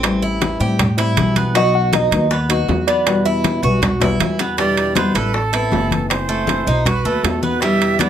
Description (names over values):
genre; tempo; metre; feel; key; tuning
latin, Cuban son and guajira; 158 BPM; 4/4; straight; E minor; A4 = 436 Hz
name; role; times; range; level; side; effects
nylon-string guitar; accompaniment; 0.0-8.1 s; B2 to F#4; -21 LUFS; left 3 dB; none
Cuban tres; arpeggios; 0.0-8.1 s; G3 to A4; -22 LUFS; right 2 dB; none
upright bass; bass; 0.0-8.1 s; F#1 to A2; -22 LUFS; equal; none
bongos; percussion; 0.0-8.1 s; none; -26 LUFS; left 5 dB; none
congas; percussion; 0.0-8.1 s; none; -24 LUFS; left 2 dB; none
timbales; percussion; 0.0-8.1 s; none; -22 LUFS; right 8 dB; none
tine electric piano; melody; 1.6-3.8 s; D5 to F#5; -18 LUFS; right 1 dB; overdrive, fast stereo tremolo
breathy bright jazz flute; second line; 4.6-8.1 s; A4 to E5; -21 LUFS; right 4 dB; none
room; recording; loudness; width
moderate studio reverb, RT60 0.5 s; none; -14 LUFS; side -9 dB against mid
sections
0.0-4.6 A section; 4.6-8.1 B section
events
tine electric piano solo 0.0-4.6; drum fill 4.0-4.6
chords
0.0 Am7; 1.5 B; 3.1 Emadd9; 4.6 Em7; 5.3 Amadd9; 6.1 F#m7b5; 6.9 B7